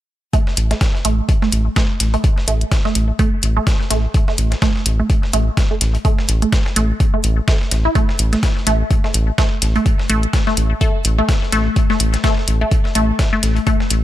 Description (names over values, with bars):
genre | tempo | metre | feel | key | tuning
minimal techno | 126 BPM | 4/4 | swing 57% on 16ths | unclear | A4 = 439 Hz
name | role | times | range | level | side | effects
resonant blip pluck | riff | 0.3-13.7 s | A3 to E4 | -21 LUFS | equal | phaser, sidechain pumping, ping-pong delay
dusty soul sampler-style drum kit | drums | 0.3-14.0 s | hi-hat, snare drum | -27 LUFS | left 1 dB | high-pass filter on hats, high-pass filter on snare
electronic kick drum | drums | 0.3-13.8 s | none | -16 LUFS | equal | none
round analog bass | bass | 0.6-14.0 s | A1 | -17 LUFS | equal | sidechain pumping
electronic hi-hat | drums | 0.6-14.0 s | none | -20 LUFS | left 1 dB | none
room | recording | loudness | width
digital ambience | none | -14 LUFS | side -13 dB against mid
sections
0.3-14.0 A section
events
none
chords
0.3 A5